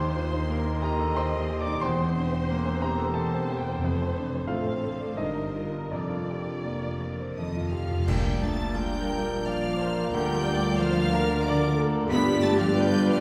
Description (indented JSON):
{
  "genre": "classical, romantic movement for piano and orchestra",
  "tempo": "80-92 BPM",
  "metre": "3/4",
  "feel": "rubato",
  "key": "Bb major",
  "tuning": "A4 = 440 Hz",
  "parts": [
    { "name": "bright symphonic violin section", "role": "melody", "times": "0.0-13.2 s", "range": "G4 to B6", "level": "-43 LUFS", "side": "equal", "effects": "none" },
    { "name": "clear baby grand piano", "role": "melody", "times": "0.0-13.2 s", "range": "Bb1 to D6", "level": "-32 LUFS", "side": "equal", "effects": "none" },
    { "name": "rich symphonic violin section", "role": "second line", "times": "0.0-13.2 s", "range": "D5 to D6", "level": "-43 LUFS", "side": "equal", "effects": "none" },
    { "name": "warm symphonic viola section", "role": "accompaniment", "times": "0.0-13.2 s", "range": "G4 to Eb5", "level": "-37 LUFS", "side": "equal", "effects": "none" },
    { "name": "rich symphonic cello section", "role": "bass", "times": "0.0-13.2 s", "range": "Eb2 to B3", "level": "-34 LUFS", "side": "equal", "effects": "none" },
    { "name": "warm symphonic double bass section", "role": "bass", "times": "0.0-13.2 s", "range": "E1 to G2", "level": "-36 LUFS", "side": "equal", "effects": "none" },
    { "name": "cymbal swell, clash cymbals and concert bass drum", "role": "percussion", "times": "3.8-9.4 s", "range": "none", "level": "-37 LUFS", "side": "equal", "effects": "none" },
    { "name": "timpani", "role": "percussion", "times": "3.8-9.1 s", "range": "F2 to Bb2", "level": "-34 LUFS", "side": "equal", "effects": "none" },
    { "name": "mellow silver concert flute", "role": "second line", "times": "7.4-13.2 s", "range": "D5 to B5", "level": "-41 LUFS", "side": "equal", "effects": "none" },
    { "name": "clear clarinet", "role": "second line", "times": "8.1-13.2 s", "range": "D4 to F4", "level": "-42 LUFS", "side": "equal", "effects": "none" },
    { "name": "warm bassoon", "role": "accompaniment", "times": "8.1-13.2 s", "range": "G3 to Bb3", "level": "-38 LUFS", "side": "equal", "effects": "none" },
    { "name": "mellow French horn section", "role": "sustained chords", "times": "8.1-13.2 s", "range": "G3 to F4", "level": "-36 LUFS", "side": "equal", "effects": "none" },
    { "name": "clear trumpet section", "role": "stabs", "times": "8.1-13.2 s", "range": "D5", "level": "-37 LUFS", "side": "equal", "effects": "none" },
    { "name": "mellow tuba", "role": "bass", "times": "8.1-13.2 s", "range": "G1 to D2", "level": "-34 LUFS", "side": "equal", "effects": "none" }
  ],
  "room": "wet scoring stage reverb, RT60 1.6 s",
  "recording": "heard from further back in the room",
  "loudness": "-27 LUFS",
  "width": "mono",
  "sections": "0.0-8.1 A section; 8.1-13.2 B section",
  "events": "timpani fill 7.4-8.1; band accent 8.1-8.8",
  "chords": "0.0 Cm7/Eb; 1.8 C7/E; 3.8 F; 5.2 Eb/G; 5.9 Bb/F; 7.4 F; 8.1 Bb; 10.1 Bb/D; 12.1 G7"
}